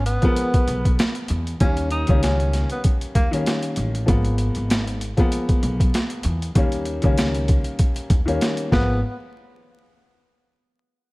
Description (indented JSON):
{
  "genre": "hip hop, boom-bap hip-hop",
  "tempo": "97 BPM",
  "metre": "4/4",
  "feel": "swing 55% on 16ths",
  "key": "G# dorian",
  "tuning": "A4 = 441 Hz",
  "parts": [
    { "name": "mellow tenor saxophone", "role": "melody", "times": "0.0-3.3, 8.7-9.0 s", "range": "A#3 to D#4", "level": "-27 LUFS", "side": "right 1 dB", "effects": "high-pass filter, low-pass filter, slapback echo" },
    { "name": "upright bass", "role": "bass", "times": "0.0-9.0 s", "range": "G#1 to E2", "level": "-24 LUFS", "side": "equal", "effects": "none" },
    { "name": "boom bap sampler-style drum kit", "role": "drums", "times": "0.1-8.9 s", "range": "hi-hat, kick drum, snare drum", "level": "-20 LUFS", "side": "equal", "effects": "overdrive" },
    { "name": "dark upright piano", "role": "accompaniment", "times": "0.2-9.0 s", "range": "D#3 to A#4", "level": "-25 LUFS", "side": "left 1 dB", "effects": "high-pass filter, low-pass filter" }
  ],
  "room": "studio ambience",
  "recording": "vinyl crackle",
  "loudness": "-18 LUFS",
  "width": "side -22 dB against mid",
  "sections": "0.0-9.0 A section; 9.0-11.1 B section",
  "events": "none",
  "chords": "0.0 G#m69; 1.6 D#7; 4.1 G#m69; 6.6 D#7; 8.7 G#m69; 9.0 N.C.",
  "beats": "0.37 0.99 | 1.61 2.23 2.85 3.46 | 4.08 4.70 5.32 5.94 | 6.56 7.18 7.79 8.41"
}